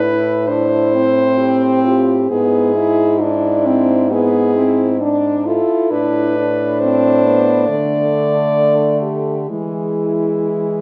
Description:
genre	classical, lyrical piece for horn quartet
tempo	63-69 BPM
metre	4/4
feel	rubato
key	A minor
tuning	A4 = 440 Hz
part	dark French horn	melody	0.0-10.8 s	E4 to D5	-20 LUFS	equal	none
part	warm French horn	second line	0.0-10.8 s	D4 to G4	-24 LUFS	equal	none
part	mellow French horn	accompaniment	0.0-10.8 s	G#3 to E4	-20 LUFS	equal	none
part	warm French horn	bass	0.0-10.8 s	G#2 to E3	-24 LUFS	equal	none
room	moderate recital hall reverb, RT60 1.4 s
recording	dark, warm production, nothing above 8.0 kHz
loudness	-15 LUFS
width	mono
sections	0.0-10.8 A section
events	none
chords	0.0 Am; 2.3 E7/G#; 5.9 Am; 7.7 D5; 9.5 E

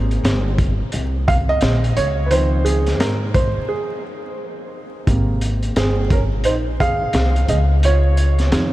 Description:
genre	hip hop, jazz-hop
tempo	87 BPM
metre	4/4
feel	swing 62% on 16ths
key	Ab major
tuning	A4 = 440 Hz
part	dark upright piano	accompaniment	0.0-8.7 s	C3 to F5	-22 LUFS	right 2 dB	none
part	upright bass	bass	0.0-8.7 s	G1 to Ab2	-18 LUFS	equal	none
part	crunchy breakbeat drum kit	drums	0.1-8.7 s	hi-hat, kick drum, snare drum	-22 LUFS	equal	none
room	light reverb, studio reverb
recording	vinyl crackle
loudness	-15 LUFS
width	side -16 dB against mid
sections	0.0-5.1 A section; 5.1-8.7 B section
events	upright piano solo 0.0-5.1, 5.1-8.7; break 3.7-5.1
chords	0.0 Abmaj9 (rootless); 2.0 Dbmaj9; 5.1 Abmaj9; 7.5 Dbmaj9

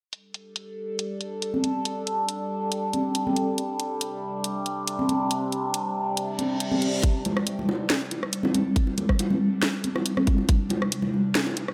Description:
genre	deep dubstep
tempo	139 BPM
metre	4/4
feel	swing 54% on 16ths, half-time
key	unclear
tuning	A4 = 440 Hz
part	overtone-sweeping drone	sustained chords	0.7-11.7 s	C3 to A4	-31 LUFS	equal	chorus, built-in reverb, phaser
part	garage drum kit	drums	0.1-11.7 s	hi-hat, rim click, snare drum	-29 LUFS	equal	overdrive, low-pass filter on hats, studio reverb, low-pass filter on snare
part	congas and bongos	percussion	1.5-11.5 s	none	-30 LUFS	equal	dub echo
part	reverse cymbal	sound effects	6.4-7.0 s	none	-37 LUFS	equal	none
part	electronic kick drum	drums	7.0-10.6 s	none	-24 LUFS	equal	overdrive, studio reverb
room	moderate echo chamber reverb, RT60 1.7 s, digital ambience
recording	none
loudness	-26 LUFS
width	mono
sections	0.1-7.0 A section; 7.0-11.7 B section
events	reverse cymbal 6.4-7.0; build-up 7.0-11.7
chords	0.1 G5; 3.6 C5; 7.0 G5; 10.5 C5

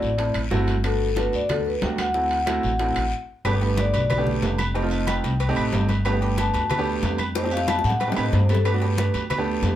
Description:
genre	Afro-Cuban jazz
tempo	184 BPM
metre	4/4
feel	straight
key	G major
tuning	A4 = 439 Hz
part	vibraphone with medium hard mallets	melody	0.0-9.1 s	A4 to A5	-26 LUFS	left 2 dB	none
part	clear grand piano	accompaniment	0.0-9.8 s	A3 to A4	-27 LUFS	right 3 dB	none
part	upright bass	bass	0.0-9.8 s	F1 to A2	-24 LUFS	equal	none
part	bongos and cowbell	percussion	0.0-9.8 s	none	-33 LUFS	left 5 dB	none
part	congas	percussion	0.0-9.8 s	none	-32 LUFS	equal	none
part	guiro	percussion	0.0-9.8 s	none	-38 LUFS	left 5 dB	none
part	timbales and agogo bells	percussion	0.2-9.8 s	none	-31 LUFS	right 3 dB	none
part	claves	percussion	0.4-9.5 s	none	-37 LUFS	left 3 dB	none
room	moderate club reverb, RT60 0.6 s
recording	heard from further back in the room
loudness	-20 LUFS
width	side -12 dB against mid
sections	0.0-3.5 A section; 3.5-9.8 B section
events	stop 3.1-3.5; vibraphone solo 3.5-9.8; drum fill 7.4-8.7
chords	0.0 D7; 0.8 Gmaj7; 2.1 D7; 3.5 Gadd9; 4.8 F7; 6.1 Gadd9; 7.4 F7; 8.7 Gadd9

